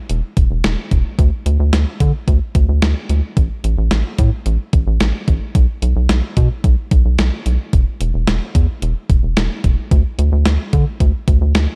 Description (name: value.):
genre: synth-pop.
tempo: 110 BPM.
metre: 4/4.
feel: straight.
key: unclear.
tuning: A4 = 440 Hz.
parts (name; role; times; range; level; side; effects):
rubbery square bass; bass; 0.1-11.7 s; E1 to D3; -18 LUFS; equal; none.
detuned 8-bit digital drum machine; drums; 0.1-11.7 s; hi-hat, kick drum, snare drum; -18 LUFS; equal; none.
room: little or no reverb.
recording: dark, warm production.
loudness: -16 LUFS.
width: mono.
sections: 0.0-11.8 A section.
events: none.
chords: none.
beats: 0.10 0.64 | 1.19 1.73 2.28 2.82 | 3.37 3.91 4.46 5.00 | 5.55 6.09 6.64 7.19 | 7.73 8.28 8.82 9.37 | 9.91 10.46 11.00 11.55.